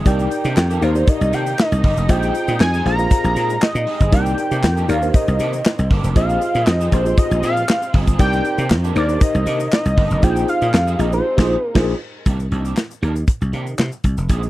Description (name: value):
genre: early-eighties boogie funk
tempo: 118 BPM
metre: 4/4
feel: straight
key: C minor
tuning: A4 = 440 Hz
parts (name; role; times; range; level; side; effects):
- warm studio string section; sustained chords; 0.0-12.2 s; C3 to Eb4; -31 LUFS; right 1 dB; none
- electric guitar at the edge of break-up; riff; 0.0-14.5 s; Eb3 to Bb4; -29 LUFS; right 4 dB; ensemble chorus
- fat analog lead; melody; 0.1-11.9 s; C5 to Bb5; -22 LUFS; equal; chorus
- mellow tine electric piano; accompaniment; 0.1-11.9 s; D4 to F5; -22 LUFS; left 1 dB; medium stereo tremolo
- dry thumbed slap bass; bass; 0.1-14.5 s; F1 to C3; -19 LUFS; equal; none
- modern studio drum kit; drums; 0.1-14.5 s; crash cymbal, handclaps, hi-hat, kick drum, snare drum; -16 LUFS; equal; none
- tube shaker; percussion; 0.1-14.5 s; none; -41 LUFS; left 9 dB; none
room: little or no reverb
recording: dry, close 1970s-style studio recording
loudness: -15 LUFS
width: side -16 dB against mid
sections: 0.0-12.3 A section; 12.3-14.5 B section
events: band accent 11.2-12.3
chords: 0.1 Cm9; 2.1 Bb9sus4; 4.1 Cm9; 6.2 Bb9sus4; 8.2 Cm9; 10.2 Bb9sus4; 12.3 Cm9